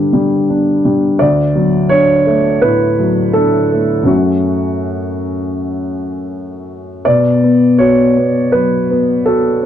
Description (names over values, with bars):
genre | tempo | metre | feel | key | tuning
neoclassical minimalist piano | 83 BPM | 4/4 | rubato | B minor | A4 = 440 Hz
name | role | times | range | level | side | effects
dark upright piano | solo | 0.0-9.7 s | D2 to D5 | -11 LUFS | equal | none
room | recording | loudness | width
light reverb | dark, warm production, nothing above 10.8 kHz | -11 LUFS | side -10 dB against mid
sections
0.0-9.7 A section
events
none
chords
0.0 G5; 1.2 D; 4.1 F#m; 7.1 Bm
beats
0.49 | 1.20 1.91 2.62 3.35 | 4.08 4.82 5.57 6.31 | 7.05 7.80 8.52 9.25